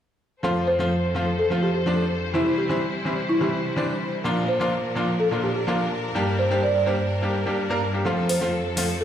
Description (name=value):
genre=EDM, festival progressive house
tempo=126 BPM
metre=4/4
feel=straight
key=F major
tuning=A4 = 440 Hz
part: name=bright grand piano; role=accompaniment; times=0.4-8.9 s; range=G2 to Bb4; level=-25 LUFS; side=equal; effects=ping-pong delay
part: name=clear symphonic string section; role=sustained chords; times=0.4-9.0 s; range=F2 to C5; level=-27 LUFS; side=left 1 dB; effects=low-pass filter
part: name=folk marimba with medium mallets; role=melody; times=0.7-9.0 s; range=E4 to D5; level=-26 LUFS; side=right 1 dB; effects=tape echo
part: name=electronic hi-hat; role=drums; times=8.3-8.9 s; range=none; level=-29 LUFS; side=left 3 dB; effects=none
room=light reverb, small room ambience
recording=played on a big sound system in a bare room, large studio reverb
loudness=-21 LUFS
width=side -9 dB against mid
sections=0.4-9.0 A section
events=none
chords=0.4 F; 2.3 C; 4.2 Bb; 6.2 Gm; 8.1 F